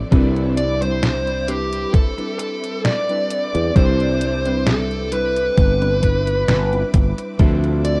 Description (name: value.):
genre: vaporwave.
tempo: 66 BPM.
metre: 4/4.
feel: swing 54% on 16ths.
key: C major.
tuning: A4 = 440 Hz.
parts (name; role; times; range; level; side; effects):
warbly lo-fi synth keys; accompaniment; 0.0-8.0 s; F3 to B5; -29 LUFS; equal; analog chorus, vintage 12-bit sampler grit.
rich studio string section; sustained chords; 0.0-8.0 s; C4 to D6; -39 LUFS; equal; vintage 12-bit sampler grit.
electric guitar at the edge of break-up; riff; 0.0-8.0 s; C4 to C5; -34 LUFS; equal; lush chorus, analog delay.
sustaining fretless electric bass; bass; 0.0-8.0 s; G1 to E2; -22 LUFS; equal; lush chorus.
detuned 8-bit digital drum machine; drums; 0.1-8.0 s; hi-hat, snare drum; -25 LUFS; equal; overdrive.
electronic kick drum; drums; 0.1-7.6 s; none; -17 LUFS; equal; overdrive.
dark smooth lead guitar; melody; 0.6-8.0 s; G4 to D5; -24 LUFS; equal; overdrive, tape echo.
room: digital ambience.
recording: rough home demo mix, cassette tape.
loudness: -19 LUFS.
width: mono.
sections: 0.0-8.0 A section.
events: none.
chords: 0.1 Cmaj9; 7.4 Dm9.